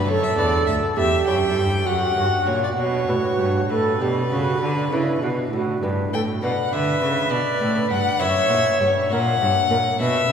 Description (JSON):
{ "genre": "classical, baroque-style sonata movement with continuo", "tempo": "66 BPM (dotted quarters)", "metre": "12/8", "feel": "straight", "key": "B minor", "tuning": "A4 = 440 Hz", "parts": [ { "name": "rich violin", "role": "melody", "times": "0.0-10.3 s", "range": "B4 to G5", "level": "-23 LUFS", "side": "left 5 dB", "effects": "none" }, { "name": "lute", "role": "accompaniment", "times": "0.0-10.3 s", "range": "D2 to C#5", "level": "-30 LUFS", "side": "equal", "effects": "none" }, { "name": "clear cello", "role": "bass", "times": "0.0-10.3 s", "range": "D2 to D3", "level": "-24 LUFS", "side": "right 1 dB", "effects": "none" }, { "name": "mellow silver concert flute", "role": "second line", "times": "0.1-10.3 s", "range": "D4 to C#5", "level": "-23 LUFS", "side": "right 3 dB", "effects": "none" } ], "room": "wet cathedral reverb, RT60 5.0 s", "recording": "recorded in a church or concert hall", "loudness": "-18 LUFS", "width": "side -7 dB against mid", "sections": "0.0-6.4 A section; 6.4-10.3 B section", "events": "none", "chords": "0.0 Bm; 1.0 C#dim/E; 1.9 F#; 2.8 Bm; 8.2 F#7" }